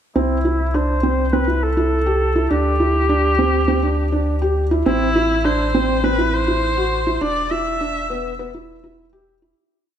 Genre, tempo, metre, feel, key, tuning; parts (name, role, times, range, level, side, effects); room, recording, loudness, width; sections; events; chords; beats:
piano and strings electronica; 102 BPM; 4/4; straight; E minor; A4 = 440 Hz
rich viola; melody; 0.2-8.4 s; E4 to E5; -21 LUFS; equal; low-pass filter
felt-muted upright piano; riff; 0.2-9.5 s; B3 to G4; -20 LUFS; right 2 dB
warm sub bass; bass; 0.2-9.5 s; E1 to D2; -22 LUFS; equal
moderate lush hall reverb, RT60 2.3 s; -16 LUFS; side -9 dB against mid
0.2-9.6 build
build-up 0.2-9.6; filter sweep on viola 0.2-9.6; fade-out 6.4-9.6
0.2 C; 2.5 Dsus4; 4.9 Am; 7.2 E7(no3)
| 0.16 0.74 1.33 1.92 | 2.51 3.10 3.69 4.27 | 4.86 5.45 6.04 6.63 | 7.21 7.80 8.39 8.98